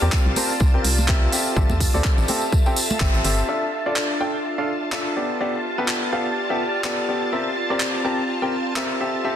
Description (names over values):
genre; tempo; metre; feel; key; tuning
piano house; 125 BPM; 4/4; swing 56% on 16ths; D minor; A4 = 441 Hz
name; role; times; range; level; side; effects
string machine, violins; sustained chords; 0.0-9.4 s; F4 to A5; -28 LUFS; equal; ensemble chorus, sidechain pumping
clear grand piano; riff; 0.0-9.4 s; B3 to A5; -24 LUFS; left 1 dB; sidechain pumping, low-pass filter, tape echo
organ-like FM bass; bass; 0.0-3.4 s; G1 to E2; -22 LUFS; equal; sidechain pumping
tambourine and congas; percussion; 0.0-3.5 s; none; -30 LUFS; equal; none
airy breathy pad; texture; 0.0-9.4 s; C4 to A5; -29 LUFS; equal; chorus, sidechain pumping
electronic kick drum; drums; 0.1-3.1 s; none; -19 LUFS; equal; overdrive
garage drum kit; drums; 0.1-8.9 s; handclaps, hi-hat; -26 LUFS; right 1 dB; none
room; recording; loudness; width
moderate lush hall reverb, RT60 2.2 s; dense, heavily limited modern master; -19 LUFS; side -10 dB against mid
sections
0.0-3.5 A section; 3.5-9.4 B section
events
band accent 3.0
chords
0.0 C7; 1.3 Am7; 3.5 Dmadd9; 5.2 Gadd9; 7.3 C7